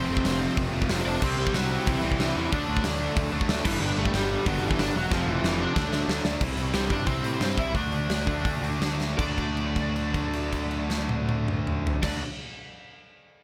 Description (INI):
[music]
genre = punk rock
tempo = 156-185 BPM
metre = 4/4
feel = straight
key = unclear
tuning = A4 = 440 Hz
[part]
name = lead guitar through a small cranked amp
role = melody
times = 0.0-12.2 s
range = E3 to E5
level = -34 LUFS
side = equal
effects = overdrive
[part]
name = crunchy overdriven guitar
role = riff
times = 0.0-6.4 s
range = F2 to D4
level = -36 LUFS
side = equal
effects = none
[part]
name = distorted electric guitar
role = riff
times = 0.0-12.2 s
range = F2 to D4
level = -35 LUFS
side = equal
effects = distortion
[part]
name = distorted electric guitar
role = riff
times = 0.0-12.2 s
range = F2 to F#4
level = -36 LUFS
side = equal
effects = overdrive
[part]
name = fuzz picked electric bass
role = bass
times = 0.0-12.2 s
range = E1 to A2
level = -33 LUFS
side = equal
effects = overdrive
[part]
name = big rock drum kit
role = drums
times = 0.2-12.1 s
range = crash cymbal, hi-hat, kick drum, snare drum, toms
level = -31 LUFS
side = equal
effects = none
[sound]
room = little or no reverb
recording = none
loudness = -26 LUFS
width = mono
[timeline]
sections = 0.0-6.4 A section; 6.4-9.2 B section; 9.2-12.3 C section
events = drum fill 5.1-6.4, 9.0; slowing down 6.4-9.2; held note 9.2-12.0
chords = 0.0 F; 1.2 C; 2.5 D; 3.7 G; 5.1 F; 5.8 D; 6.4 C; 7.7 D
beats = 0.25 0.57 0.90 | 1.22 1.55 1.87 2.19 | 2.52 2.84 3.17 3.49 | 3.81 4.14 4.46 4.79 | 5.11 5.44 5.76 6.08 | 6.41 6.74 7.06 7.40 | 7.74 8.08 8.44 8.81 | 9.18 9.57 9.95 10.34 | 10.72 11.11 11.49 11.88